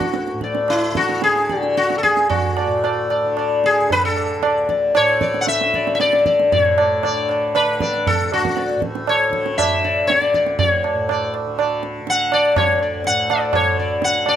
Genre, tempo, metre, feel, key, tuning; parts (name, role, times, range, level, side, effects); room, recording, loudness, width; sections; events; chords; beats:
indian classical, Hindustani; 110-125 BPM; 4/4; straight; D raga yaman; A4 = 440 Hz
sitar; melody; 0.0-14.4 s; E4 to F#5; -17 LUFS; left 2 dB
tanpura; drone; 0.0-14.4 s; D2 to D3; -28 LUFS; equal
tabla; percussion; 0.0-14.4 s; -22 LUFS; right 6 dB
light reverb; close, detailed microphones; -16 LUFS; side -10 dB against mid
0.0-6.5 A section; 6.5-14.4 B section
speeding up 0.0-14.4
| 0.15 0.69 1.23 1.77 | 2.31 2.84 3.37 3.90 | 4.43 4.96 5.48 6.00 | 6.52 7.04 7.55 8.06 | 8.57 9.08 9.59 10.09 | 10.59 11.09 11.58 12.07 | 12.56 13.05 13.54 14.02